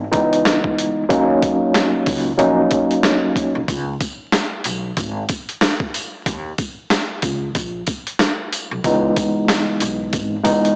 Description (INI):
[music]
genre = hip hop, boom-bap hip-hop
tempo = 93 BPM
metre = 4/4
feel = swing 58% on 16ths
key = C# dorian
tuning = A4 = 440 Hz
[part]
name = tine electric piano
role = accompaniment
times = 0.0-3.6, 8.9-10.8 s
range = C#2 to D#4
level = -19 LUFS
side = equal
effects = overdrive, high-pass filter, low-pass filter
[part]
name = upright bass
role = bass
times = 0.0-10.4 s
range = G#1 to D#2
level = -28 LUFS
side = equal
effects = transformer saturation
[part]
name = boom bap sampler-style drum kit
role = drums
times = 0.1-10.8 s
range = hi-hat, kick drum, snare drum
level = -23 LUFS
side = equal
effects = overdrive
[part]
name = sleigh bells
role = percussion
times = 3.7-10.6 s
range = none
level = -36 LUFS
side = equal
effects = none
[sound]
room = wet plate reverb, RT60 1.9 s, studio reverb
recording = blown-out, overdriven recording, vinyl crackle, overdrive, small speaker sound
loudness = -19 LUFS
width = mono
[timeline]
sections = 0.0-10.8 A section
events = break 3.7-8.8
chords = 0.0 C#m9; 1.1 D#m7; 3.7 C#5; 6.3 D#5; 8.8 C#m9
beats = 0.46 | 1.10 1.75 2.39 3.04 | 3.68 4.33 4.97 5.62 | 6.26 6.91 7.55 8.20 | 8.84 9.49 10.13